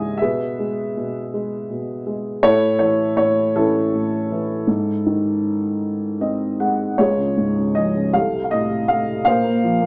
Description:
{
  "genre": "classical, lyrical solo piano",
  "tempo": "53 BPM (dotted quarters)",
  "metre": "6/8",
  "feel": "rubato",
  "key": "unclear",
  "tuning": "A4 = 440 Hz",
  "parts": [
    { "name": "dark upright piano", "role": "solo", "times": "0.0-9.9 s", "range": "C2 to G#5", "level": "-20 LUFS", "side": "equal", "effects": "none" }
  ],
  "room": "moderate small room reverb, RT60 0.5 s",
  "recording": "none",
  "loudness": "-20 LUFS",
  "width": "mono",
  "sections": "0.0-7.0 A section; 7.0-9.9 B section",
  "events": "upright piano fill 5.8-7.0",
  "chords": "0.2 E/B; 2.4 A; 4.7 G#; 7.0 Db; 8.1 F7/C; 9.3 Bbsus2"
}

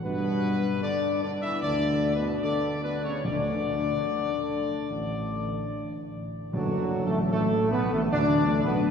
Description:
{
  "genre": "classical",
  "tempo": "75 BPM",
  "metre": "4/4",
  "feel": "straight",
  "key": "D major",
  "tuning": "A4 = 440 Hz",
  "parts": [
    { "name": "bright trumpet section", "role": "melody", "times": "0.0-8.9 s", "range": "F#4 to E5", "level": "-31 LUFS", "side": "left 4 dB", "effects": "none" },
    { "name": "clear French horn section", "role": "sustained chords", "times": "0.0-8.9 s", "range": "F#3 to E4", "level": "-34 LUFS", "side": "left 5 dB", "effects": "none" },
    { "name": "warm trombone section", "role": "sustained chords", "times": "0.0-8.8 s", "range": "B2 to D4", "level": "-30 LUFS", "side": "right 1 dB", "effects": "none" },
    { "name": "mellow tuba", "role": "bass", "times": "0.0-8.9 s", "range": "F#1 to G2", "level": "-29 LUFS", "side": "equal", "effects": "none" },
    { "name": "timpani", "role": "percussion", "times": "3.2-7.7 s", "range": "D3", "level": "-36 LUFS", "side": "left 1 dB", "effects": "none" },
    { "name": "pipe organ, principal chorus", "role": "sustained chords", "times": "6.5-8.9 s", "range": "D3 to A4", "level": "-33 LUFS", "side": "right 1 dB", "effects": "none" }
  ],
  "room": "wet cathedral reverb, RT60 5.2 s",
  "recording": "heard from further back in the room",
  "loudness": "-24 LUFS",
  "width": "side -7 dB against mid",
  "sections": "0.0-6.5 A section; 6.5-8.9 B section",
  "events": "none",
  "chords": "0.0 G; 3.2 D5; 6.5 D/F#"
}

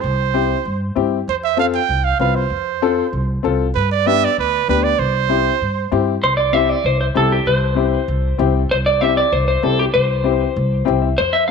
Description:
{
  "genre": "latin",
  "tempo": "194 BPM",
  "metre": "4/4",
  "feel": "straight",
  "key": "C major",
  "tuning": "A4 = 440 Hz",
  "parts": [
    { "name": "bright trumpet", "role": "second line", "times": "0.0-6.1 s", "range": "B4 to G5", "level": "-18 LUFS", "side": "right 12 dB", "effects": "none" },
    { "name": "upright bass", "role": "bass", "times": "0.0-11.5 s", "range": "C2 to G2", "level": "-21 LUFS", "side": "equal", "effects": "none" },
    { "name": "warm upright piano", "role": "accompaniment", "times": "0.3-11.5 s", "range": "B3 to G5", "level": "-19 LUFS", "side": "left 11 dB", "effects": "none" },
    { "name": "electric guitar at the edge of break-up", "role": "melody", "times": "6.2-11.5 s", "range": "G4 to F5", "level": "-17 LUFS", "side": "left 1 dB", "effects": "none" }
  ],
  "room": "moderate spring reverb, RT60 1.4 s, small room ambience",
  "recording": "1960s-style stereo with parts hard left and right",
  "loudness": "-15 LUFS",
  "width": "side -5 dB against mid",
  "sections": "0.0-6.2 A section; 6.2-11.5 B section",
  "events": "trumpet solo 0.0-6.2; upright piano fill 10.7-11.2",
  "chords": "0.0 C; 1.3 F; 3.7 G; 5.0 C"
}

